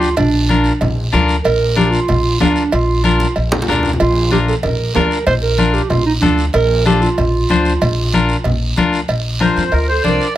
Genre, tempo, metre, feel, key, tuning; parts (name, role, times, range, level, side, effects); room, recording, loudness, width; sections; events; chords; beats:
latin, cumbia; 188 BPM; 4/4; straight; Bb major; A4 = 439 Hz
mellow clarinet; second line; 0.0-10.4 s; D4 to C5; -18 LUFS; right 4 dB
clean electric guitar; accompaniment; 0.0-10.3 s; D4 to C5; -18 LUFS; left 3 dB
upright bass; bass; 0.0-10.2 s; Bb1 to F2; -18 LUFS; equal
guiro; percussion; 0.0-10.4 s; -27 LUFS; right 4 dB
congas; percussion; 0.2-10.2 s; -20 LUFS; left 3 dB
cowbell and timbales; percussion; 0.2-9.9 s; -22 LUFS; right 2 dB
accordion; melody; 9.4-10.3 s; Bb4 to D5; -18 LUFS; equal; light tremolo tuning
light reverb; close, detailed microphones; -12 LUFS; side -13 dB against mid
0.0-9.1 A section; 9.1-10.4 B section
clarinet solo 0.0-9.1; drum fill 3.2-4.0
0.0 Bb
| 0.17 0.49 0.81 1.13 | 1.45 1.77 2.08 2.40 | 2.72 3.04 3.36 3.68 | 3.99 4.31 4.63 4.95 | 5.27 5.58 5.90 6.22 | 6.54 6.86 7.18 7.49 | 7.81 8.13 8.45 8.77 | 9.09 9.40 9.72 10.04 | 10.36